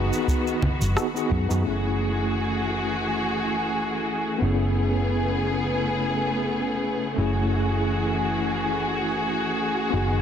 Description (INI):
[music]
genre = sunset chillout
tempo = 87 BPM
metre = 4/4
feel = swing 55% on 16ths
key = F# dorian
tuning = A4 = 441 Hz
[part]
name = bright tine electric piano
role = accompaniment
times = 0.0-10.2 s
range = A3 to G#4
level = -27 LUFS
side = moving between left 3 dB and right 3 dB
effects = medium stereo tremolo, auto-pan, tape echo
[part]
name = dark studio string section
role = sustained chords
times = 0.0-10.2 s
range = C#3 to G#4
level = -26 LUFS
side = left 1 dB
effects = none
[part]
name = hollow-body short-scale fingered electric bass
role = bass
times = 0.0-10.2 s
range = F#1 to F#2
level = -27 LUFS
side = equal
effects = none
[part]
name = wind-like tuned noise texture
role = texture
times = 0.0-1.7 s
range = B5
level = -46 LUFS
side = right 2 dB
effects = none
[part]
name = electronic cabasa, congas and rim click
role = drums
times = 0.1-10.2 s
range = none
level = -28 LUFS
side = right 2 dB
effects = low-pass filter on perc, soft clipping on snare, low-pass filter on snare
[part]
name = electronic kick drum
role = drums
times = 0.3-1.5 s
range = none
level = -26 LUFS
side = equal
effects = none
[sound]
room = moderate lush hall reverb, RT60 3.0 s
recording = dense, heavily limited modern master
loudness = -22 LUFS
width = side -8 dB against mid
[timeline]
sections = 0.0-1.7 A section; 1.7-10.2 B section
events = none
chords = 0.0 G#m7/F#; 1.7 F#m9; 4.4 Amaj9/F#; 7.2 F#m9